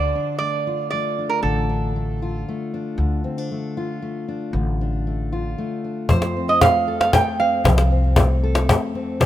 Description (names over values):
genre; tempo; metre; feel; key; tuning
acoustic folk duo or small band; 116 BPM; 3/4; straight; F major; A4 = 439 Hz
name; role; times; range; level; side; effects
lap resonator guitar; second line; 0.0-2.4, 6.1-8.4 s; A4 to G5; -21 LUFS; right 4 dB; none
fingerpicked steel-string acoustic guitar; accompaniment; 0.0-9.3 s; F2 to A4; -26 LUFS; left 3 dB; none
upright bass; bass; 0.0-9.3 s; A1 to F2; -21 LUFS; equal; none
cajon; percussion; 6.1-9.3 s; none; -18 LUFS; left 2 dB; none
room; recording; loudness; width
small room ambience; rough home demo mix; -18 LUFS; side -12 dB against mid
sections
0.0-9.3 A section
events
resonator guitar played with a steel bar solo 0.0-9.3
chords
0.0 Dm; 6.1 F